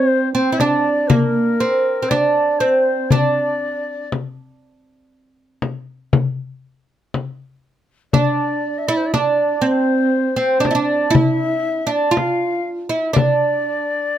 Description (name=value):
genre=Turkish makam ensemble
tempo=119 BPM (eighths)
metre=10/8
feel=straight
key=D makam ussak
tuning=A4 = 440 Hz
part: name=oud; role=melody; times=0.0-14.2 s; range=Bb3 to F4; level=-17 LUFS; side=right 3 dB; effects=none
part: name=bright reedy ney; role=second line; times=0.0-14.2 s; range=Bb4 to F5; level=-23 LUFS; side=left 6 dB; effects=none
part: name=frame drum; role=percussion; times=0.6-13.4 s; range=none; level=-18 LUFS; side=left 4 dB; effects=none
room=light reverb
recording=close, detailed microphones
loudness=-16 LUFS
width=side -11 dB against mid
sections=0.0-14.2 A section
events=none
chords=none